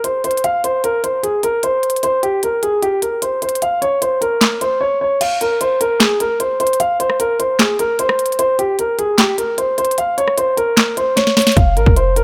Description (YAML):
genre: hip hop, trap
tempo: 151 BPM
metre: 4/4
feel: half-time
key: F minor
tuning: A4 = 440 Hz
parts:
  - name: dark concert grand piano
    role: melody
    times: 0.0-12.2 s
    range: G4 to F5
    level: -18 LUFS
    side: equal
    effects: low-pass filter
  - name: trap drum kit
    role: drums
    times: 0.0-12.2 s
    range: crash cymbal, handclaps, hi-hat, kick drum, rim click, snare drum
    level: -19 LUFS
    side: equal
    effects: none
  - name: clean 808-style bass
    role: bass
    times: 11.6-12.2 s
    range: F1 to Ab1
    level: -17 LUFS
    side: equal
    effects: none
room: little or no reverb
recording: none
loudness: -16 LUFS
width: mono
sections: 0.0-5.2 A section; 5.2-12.2 B section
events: kick muted 5.2-11.6; drum fill 11.2-11.6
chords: 0.0 N.C.; 11.6 Fm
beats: 0.04 | 0.44 0.84 1.24 1.63 | 2.03 2.43 2.83 3.22 | 3.62 4.02 4.41 4.81 | 5.21 5.61 6.00 6.40 | 6.80 7.20 7.59 7.99 | 8.39 8.79 9.18 9.58 | 9.98 10.37 10.77 11.17 | 11.57 11.96